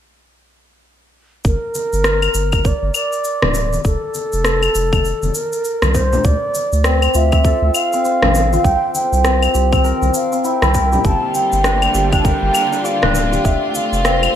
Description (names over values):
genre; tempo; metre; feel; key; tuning
organic downtempo; 100 BPM; 4/4; swing 60% on 16ths; unclear; A4 = 438 Hz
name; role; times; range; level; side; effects
round analog bass; bass; 1.4-14.3 s; D1 to D2; -18 LUFS; equal; none
electronic kick drum; drums; 1.4-13.6 s; none; -18 LUFS; equal; none
electronic shaker, rim click and claves; drums; 1.4-14.3 s; none; -20 LUFS; left 1 dB; gated reverb
mellow bansuri; melody; 1.5-14.4 s; A4 to A5; -19 LUFS; equal; digital delay
congas; percussion; 1.8-13.9 s; none; -25 LUFS; left 2 dB; none
santur; arpeggios; 6.8-14.4 s; C4 to D5; -19 LUFS; left 2 dB; ping-pong delay
rich studio string section; sustained chords; 11.1-14.4 s; D3 to F4; -23 LUFS; right 1 dB; sidechain pumping
room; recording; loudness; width
moderate lush hall reverb, RT60 2.0 s; bright 1980s-style digital production; -14 LUFS; side -10 dB against mid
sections
1.4-14.4 A section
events
none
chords
1.4 Gm; 3.8 F; 6.2 Dm7; 8.6 C7; 11.0 Gm7; 13.4 F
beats
| 1.45 2.05 2.65 3.25 | 3.85 4.45 5.05 5.65 | 6.25 6.85 7.45 8.05 | 8.65 9.25 9.85 10.45 | 11.05 11.65 12.25 12.85 | 13.45 14.05